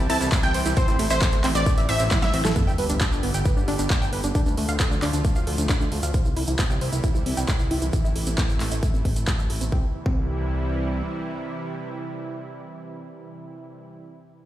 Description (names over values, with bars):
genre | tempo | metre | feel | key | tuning
uplifting trance | 134 BPM | 4/4 | straight | C major | A4 = 439 Hz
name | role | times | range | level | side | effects
supersaw pad | sustained chords | 0.0-13.9 s | C3 to G4 | -32 LUFS | right 1 dB | sidechain pumping
tight sequenced synth | arpeggios | 0.0-10.2 s | A3 to G5 | -29 LUFS | right 1 dB | chorus, sidechain pumping, dub echo
fat analog bass | bass | 0.0-11.0 s | G1 to D2 | -26 LUFS | equal | sidechain pumping
wide unison pluck | melody | 0.1-2.4 s | C5 to A5 | -28 LUFS | equal | vintage 12-bit sampler grit, sidechain pumping, dub echo
clear baby grand piano | second line | 0.1-2.4 s | C6 to A6 | -33 LUFS | equal | sidechain pumping, dub echo
big-room dance drum kit | drums | 0.1-9.7 s | handclaps, hi-hat, ride cymbal, snare drum | -29 LUFS | equal | overdrive
tube shaker | percussion | 0.2-9.7 s | none | -37 LUFS | right 3 dB | none
electronic kick drum | drums | 0.3-10.2 s | none | -22 LUFS | equal | overdrive
sub drop | sound effects | 2.6-4.3 s | none | -31 LUFS | equal | none
room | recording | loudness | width
light reverb | played on a big sound system in a bare room, stone room reverb | -21 LUFS | side -13 dB against mid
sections
0.0-2.6 A section; 2.6-9.7 B section; 9.7-13.3 C section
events
drop 0.0-2.6; drum fill 2.1-2.6; impact 2.6-4.3; filter sweep on analog synth bass 2.6-9.7; filter sweep on synth arpeggio sound 2.6-9.7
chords
0.0 C; 0.8 Am; 2.6 G; 4.3 Dm; 6.1 C; 7.9 Am; 9.7 C